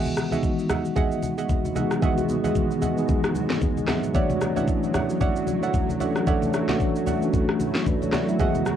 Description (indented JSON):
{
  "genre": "amapiano",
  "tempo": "113 BPM",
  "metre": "4/4",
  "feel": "swing 58% on 16ths",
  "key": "unclear",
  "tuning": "A4 = 440 Hz",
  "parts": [
    { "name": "mellow tine electric piano", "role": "accompaniment", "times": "0.0-8.8 s", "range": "D#3 to E5", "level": "-25 LUFS", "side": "left 1 dB", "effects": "medium stereo tremolo" },
    { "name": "granular cloud pad", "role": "sustained chords", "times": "0.9-8.8 s", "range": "D3 to F#4", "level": "-30 LUFS", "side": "equal", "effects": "built-in reverb" },
    { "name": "soft round pluck", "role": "stabs", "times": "0.0-8.8 s", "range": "G#4 to F#5", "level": "-29 LUFS", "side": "right 8 dB", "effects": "chorus, analog delay, plate reverb" },
    { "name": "afro-pop drum kit", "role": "drums", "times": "0.1-8.8 s", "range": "kick drum, rim click, shaker, snare drum", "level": "-26 LUFS", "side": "equal", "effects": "none" },
    { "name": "congas", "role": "percussion", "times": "0.1-8.8 s", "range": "none", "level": "-32 LUFS", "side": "left 4 dB", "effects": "none" }
  ],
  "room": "moderate booth ambience, RT60 0.2 s",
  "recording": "home recording on cassette",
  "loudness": "-21 LUFS",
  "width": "side -9 dB against mid",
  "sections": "0.0-8.8 A section",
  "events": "none",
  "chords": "0.0 Emaj9; 4.1 Dmaj9",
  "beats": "0.43 0.96 1.49 | 2.02 2.56 3.09 3.62 | 4.15 4.68 5.21 5.74 | 6.27 6.80 7.33 7.86 | 8.39"
}